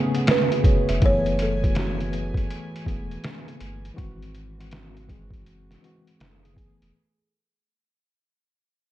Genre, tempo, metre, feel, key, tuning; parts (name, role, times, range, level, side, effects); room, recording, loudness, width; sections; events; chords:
lo-fi hip hop; 81 BPM; 4/4; swing 66% on 16ths; F# minor; A4 = 439 Hz
mellow tine electric piano; accompaniment; 0.0-7.0 s; C#3 to G#5; -28 LUFS; left 2 dB; medium stereo tremolo, cassette tape, low-pass filter
warm studio string section; sustained chords; 0.0-6.9 s; C#3 to G#5; -38 LUFS; right 3 dB; low-pass filter
lo-fi sampler-style drum kit; drums; 0.1-6.9 s; hi-hat, kick drum, snare drum; -23 LUFS; equal; overdrive
buzzing kalimba; melody; 0.3-6.2 s; F#4 to C#5; -26 LUFS; right 4 dB; low-pass filter
saturated sub bass; bass; 0.9-6.9 s; E1 to G#1; -32 LUFS; equal
light reverb; dark, warm production; -20 LUFS; side -13 dB against mid
0.0-6.9 A section
fade-out 0.0-6.9
0.0 Amaj9; 1.0 F#m11; 4.0 G#7b13; 6.2 F#m11